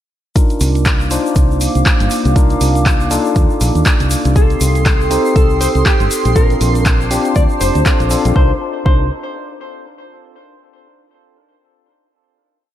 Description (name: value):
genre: deep house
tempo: 120 BPM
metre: 4/4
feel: swing 58% on 16ths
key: C dorian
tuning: A4 = 441 Hz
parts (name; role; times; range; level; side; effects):
- warbly tape-like pad; sustained chords; 0.7-8.6 s; Bb3 to Eb6; -22 LUFS; right 1 dB; chorus, built-in reverb, sidechain pumping
- tine electric piano; stabs; 0.4-9.1 s; C4 to C5; -20 LUFS; moving between left 4 dB and right 4 dB; overdrive, auto-pan, sidechain pumping, ping-pong delay
- electronic kick drum; drums; 0.4-9.0 s; none; -13 LUFS; equal; none
- punchy analog drum machine; drums; 0.4-8.3 s; handclaps, hi-hat; -21 LUFS; equal; none
- egg shaker; percussion; 0.4-8.3 s; none; -28 LUFS; left 5 dB; none
- fingered electric bass; bass; 0.6-9.1 s; F1 to Eb2; -16 LUFS; equal; sidechain pumping
- vintage hollow-body jazz guitar; melody; 4.4-9.1 s; G4 to D5; -21 LUFS; left 1 dB; tape echo
- analog string pad; texture; 4.4-8.4 s; C6; -26 LUFS; right 4 dB; ensemble chorus, sidechain pumping
room: light reverb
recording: none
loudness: -11 LUFS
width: side -12 dB against mid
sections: 0.4-8.4 drop; 8.4-10.4 final chord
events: drop 0.4-8.4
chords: 0.4 Cm11; 4.4 Am7b5; 6.4 Bbmaj9; 8.4 Cm11